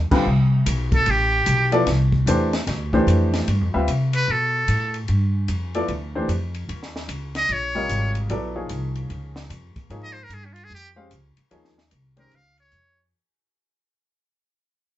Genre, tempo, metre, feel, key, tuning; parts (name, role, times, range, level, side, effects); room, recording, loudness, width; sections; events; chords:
modal jazz; 149 BPM; 4/4; swing 64% on 8ths; A4 = 444 Hz
upright bass; bass; 0.0-13.1 s; Ab1 to C3; -22 LUFS; equal
clear baby grand piano; accompaniment; 0.1-12.3 s; C3 to F5; -22 LUFS; left 1 dB
compact cocktail drum kit; drums; 0.1-12.8 s; crash cymbal, hi-hat, kick drum, ride cymbal, snare drum; -28 LUFS; equal
trumpet with metal mute; melody; 0.9-13.0 s; Db4 to F5; -22 LUFS; right 1 dB
moderate studio ambience, RT60 0.5 s; band playing live in one room, nothing above 7.9 kHz; -19 LUFS; side -13 dB against mid
0.3-13.1 A section
muted trumpet solo 0.3-13.1; fade-out 1.5-13.1
0.3 G9sus4; 6.7 Eb9sus4